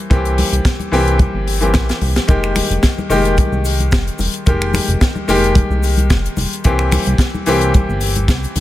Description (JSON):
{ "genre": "nu-disco, nu disco", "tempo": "110 BPM", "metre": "4/4", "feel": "swing 54% on 16ths", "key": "F minor", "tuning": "A4 = 442 Hz", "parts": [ { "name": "bright grand piano", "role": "accompaniment", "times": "0.0-8.6 s", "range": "Eb3 to G4", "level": "-18 LUFS", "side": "left 1 dB", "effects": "vintage 12-bit sampler grit, sidechain pumping, ping-pong delay" }, { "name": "chorused synth bass", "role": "bass", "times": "0.1-8.6 s", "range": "F1 to C2", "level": "-18 LUFS", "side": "equal", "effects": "none" }, { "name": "kick drum", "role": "drums", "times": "0.1-8.4 s", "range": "none", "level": "-13 LUFS", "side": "equal", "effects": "none" }, { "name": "tight funk drum kit", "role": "drums", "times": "0.1-8.6 s", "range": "finger snaps, hi-hat, snare drum", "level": "-22 LUFS", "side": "left 1 dB", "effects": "none" }, { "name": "congas and cabasa", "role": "percussion", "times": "0.4-8.6 s", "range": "none", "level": "-25 LUFS", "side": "left 2 dB", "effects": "none" } ], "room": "small room ambience", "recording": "none", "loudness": "-13 LUFS", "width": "side -14 dB against mid", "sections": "0.0-8.6 A section", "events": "drum fill 1.9-2.3", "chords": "0.0 C7; 2.3 Fm11; 6.7 C7" }